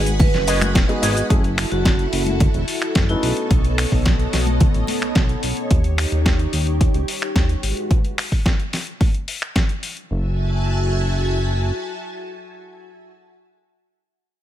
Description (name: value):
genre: nu-disco, nu disco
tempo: 109 BPM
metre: 4/4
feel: straight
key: F# dorian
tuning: A4 = 438 Hz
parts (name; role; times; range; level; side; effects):
- string machine, full ensemble; sustained chords; 0.0-13.1 s; G#3 to D#6; -26 LUFS; equal; ensemble chorus, sidechain pumping
- chorused synth bass; bass; 0.0-11.7 s; D#1 to D#2; -21 LUFS; equal; none
- dusty soul sampler-style drum kit; drums; 0.1-10.1 s; finger snaps, hi-hat, shaker, snare drum; -24 LUFS; left 1 dB; small room ambience
- vibraphone with hard mallets; melody; 0.2-3.2 s; E4 to B4; -28 LUFS; right 5 dB; dub echo
- electric guitar with an envelope filter; riff; 0.2-1.3 s; F#4 to D#5; -26 LUFS; right 2 dB; ensemble chorus, dub echo
- electronic kick drum; drums; 0.2-9.7 s; none; -18 LUFS; equal; small room ambience
- congas; percussion; 0.2-5.0 s; none; -26 LUFS; left 1 dB; none
- dark grand piano; accompaniment; 0.9-3.5 s; G#3 to B4; -25 LUFS; left 1 dB; vintage 12-bit sampler grit, sidechain pumping, low-pass filter, dub echo
room: little or no reverb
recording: none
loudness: -17 LUFS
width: side -12 dB against mid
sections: 0.0-1.3 A section; 1.3-10.1 B section; 10.1-12.3 C section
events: drop 0.0-1.3; filter sweep on analog synth bass 1.3-7.9; filter sweep on grand piano 1.3-3.5; filter sweep on string machine 1.3-7.9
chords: 0.0 G#m7; 1.3 F#m7; 3.2 B9; 5.7 D#7; 7.6 G#m7; 10.1 F#m9